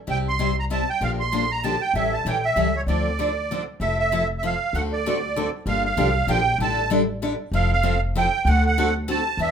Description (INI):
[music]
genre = acoustic string swing (jazz manouche)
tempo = 193 BPM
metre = 3/4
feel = swing 58% on 8ths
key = D minor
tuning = A4 = 440 Hz
[part]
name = musette accordion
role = melody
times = 0.1-9.5 s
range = C#5 to C6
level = -23 LUFS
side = right 3 dB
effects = none
[part]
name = picked steel-string acoustic guitar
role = accompaniment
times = 0.1-9.5 s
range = C3 to A4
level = -26 LUFS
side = left 2 dB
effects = none
[part]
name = upright bass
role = bass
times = 0.1-9.5 s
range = F1 to E2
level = -25 LUFS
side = left 1 dB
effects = none
[sound]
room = moderate club reverb, RT60 0.8 s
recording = minimal, uncompressed stereo recording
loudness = -20 LUFS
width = side -7 dB against mid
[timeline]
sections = 0.0-3.8 A section; 3.8-9.5 B section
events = none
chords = 0.1 C; 1.0 Gm7/Bb; 1.9 A7; 2.9 Dm7; 3.8 Fmaj7; 4.7 D7; 5.7 Gm7; 6.6 A7sus4; 7.5 Fmaj7; 8.5 D7